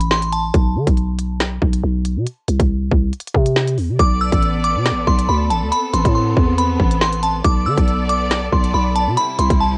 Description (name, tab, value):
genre	hip hop, drill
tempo	139 BPM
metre	4/4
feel	half-time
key	B phrygian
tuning	A4 = 440 Hz
part	glassy synth bell	melody	0.0-0.5, 4.0-9.8 s	A5 to E6	-22 LUFS	equal	chorus, low-pass filter, cassette tape
part	growling 808-style bass	bass	0.0-9.8 s	A1 to D3	-21 LUFS	equal	none
part	drill drum kit	drums	0.0-9.6 s	hi-hat, kick drum, snare drum	-21 LUFS	equal	vintage 12-bit sampler grit, cassette tape
part	rich symphonic string section	sustained chords	4.0-9.8 s	C3 to D5	-27 LUFS	equal	cassette tape
room	little or no reverb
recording	home recording on cassette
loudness	-18 LUFS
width	mono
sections	0.0-9.8 A section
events	none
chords	0.0 Am; 0.5 N.C.; 4.0 Bm7; 5.7 Amadd9; 7.4 Bm7; 9.2 C